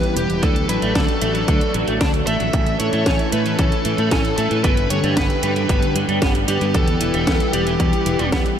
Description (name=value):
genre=italo disco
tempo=114 BPM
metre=4/4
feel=straight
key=D major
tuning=A4 = 441 Hz
part: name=fuzz lead guitar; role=melody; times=0.0-8.3 s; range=G4 to E5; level=-24 LUFS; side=equal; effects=distortion, ping-pong delay
part: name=lush unison pad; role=sustained chords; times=0.0-8.6 s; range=D3 to A4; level=-22 LUFS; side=equal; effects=chorus
part: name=house drum kit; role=drums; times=0.0-8.6 s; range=hi-hat, snare drum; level=-27 LUFS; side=equal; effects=overdrive
part: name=fingered electric bass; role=bass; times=0.2-8.4 s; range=E1 to A2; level=-24 LUFS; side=equal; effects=none
part: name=electric guitar at the edge of break-up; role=arpeggios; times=0.4-8.4 s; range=B2 to D4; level=-24 LUFS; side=right 2 dB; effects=analog chorus, analog delay
part: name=electronic kick drum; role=drums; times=0.4-8.4 s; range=none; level=-20 LUFS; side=equal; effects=overdrive
room=moderate huge ambient reverb, RT60 8.3 s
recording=dreamy mix soaked in reverb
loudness=-16 LUFS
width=side -9 dB against mid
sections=0.0-8.6 A section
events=none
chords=0.4 D; 2.5 A; 4.6 G; 6.7 Em